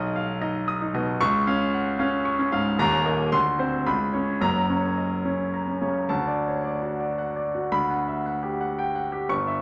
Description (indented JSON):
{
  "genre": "classical, virtuoso piano study",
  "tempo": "112 BPM",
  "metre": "3/4",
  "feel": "rubato",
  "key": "F# major, D major from 6.1 s",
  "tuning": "A4 = 440 Hz",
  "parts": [
    { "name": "warm grand piano", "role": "solo", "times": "0.0-9.6 s", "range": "D#1 to D#6", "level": "-25 LUFS", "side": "equal", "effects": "none" }
  ],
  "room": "wet large studio reverb, RT60 0.8 s",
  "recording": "none",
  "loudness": "-25 LUFS",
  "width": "mono",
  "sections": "0.0-6.1 A section; 6.1-9.6 B section",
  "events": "none",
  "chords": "0.0 B; 1.2 C#; 2.8 D#5; 3.3 Csus2/D; 3.9 Bsus2/C#; 4.4 F#; 6.1 D; 7.7 Gmaj7/D"
}